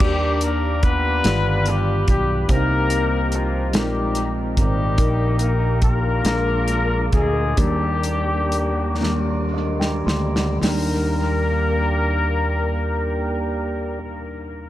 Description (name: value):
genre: slow gospel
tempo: 35-48 BPM (dotted quarters)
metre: 6/8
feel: straight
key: Eb major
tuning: A4 = 439 Hz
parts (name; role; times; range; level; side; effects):
- clear horn section; melody; 0.0-14.0 s; F3 to Cb5; -24 LUFS; left 3 dB; dub echo
- mellow tine electric piano; accompaniment; 0.0-14.7 s; Eb2 to C6; -25 LUFS; left 1 dB; analog chorus, dub echo
- mellow tonewheel organ; sustained chords; 0.0-14.0 s; Ab3 to D6; -30 LUFS; right 4 dB; fast rotary speaker
- fingered electric bass; bass; 0.0-14.0 s; G1 to Eb2; -23 LUFS; equal; none
- warm soul drum kit; drums; 0.0-10.9 s; crash cymbal, hi-hat, kick drum, snare drum; -22 LUFS; equal; dub echo
room: small room ambience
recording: echo-heavy mix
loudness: -18 LUFS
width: side -14 dB against mid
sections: 0.0-10.6 A section; 10.6-14.1 B section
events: slowing down 5.0-10.6; drum fill 9.0-10.6; tine electric piano fill 9.0-10.6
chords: 0.0 Ebmaj7; 1.2 G7b13; 2.5 Cm7; 3.7 Bb9sus4; 5.0 Eb/Bb; 6.2 Bb7; 7.6 Ebmaj7